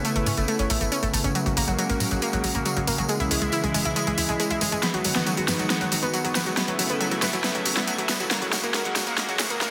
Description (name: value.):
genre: uplifting trance.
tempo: 138 BPM.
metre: 4/4.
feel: straight.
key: unclear.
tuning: A4 = 441 Hz.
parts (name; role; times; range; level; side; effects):
lush unison pad; sustained chords; 0.0-9.7 s; C#3 to F#4; -30 LUFS; equal; chorus.
analog pluck; arpeggios; 0.0-9.7 s; F#3 to E4; -30 LUFS; equal; chorus, delay.
big-room dance drum kit; drums; 0.0-9.7 s; hi-hat, snare drum; -30 LUFS; equal; overdrive.
tambourine; percussion; 0.1-9.7 s; none; -33 LUFS; equal; none.
tight sequencer bass; bass; 0.2-9.6 s; G#1 to A#2; -33 LUFS; equal; none.
riser; sound effects; 8.0-9.7 s; none; barely audible; none; none.
room: light reverb.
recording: dense, heavily limited modern master, high-pass filter.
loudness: -24 LUFS.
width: mono.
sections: 0.0-9.7 A section.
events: build-up 0.0-9.7; filter sweep 0.0-9.7; drum fill 4.8-9.7.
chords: 0.0 Aadd9; 1.4 F#add9/A#; 3.1 C#m; 4.8 G#m7; 6.6 Aadd9; 8.3 F#add9/A#.